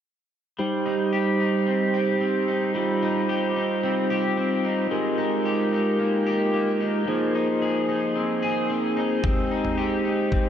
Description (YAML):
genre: dream pop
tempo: 111 BPM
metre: 4/4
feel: straight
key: unclear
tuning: A4 = 440 Hz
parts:
  - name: mellow tonewheel organ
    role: sustained chords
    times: 0.6-10.5 s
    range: G3 to C5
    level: -23 LUFS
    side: right 2 dB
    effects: slow rotary speaker
  - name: electric guitar at the edge of break-up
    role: arpeggios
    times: 0.6-10.5 s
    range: F3 to Ab4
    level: -26 LUFS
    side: left 3 dB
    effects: lush chorus, analog delay
  - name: detuned 8-bit digital drum machine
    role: drums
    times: 9.2-10.4 s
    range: kick drum, toms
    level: -25 LUFS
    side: left 1 dB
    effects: none
room: wet huge ambient reverb, RT60 7.7 s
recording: dreamy mix soaked in reverb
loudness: -21 LUFS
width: side -9 dB against mid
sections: 0.6-10.5 A section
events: none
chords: 0.6 Cmadd11/G; 4.9 Fm11/Ab; 7.1 Bb9sus4; 9.2 Abmaj7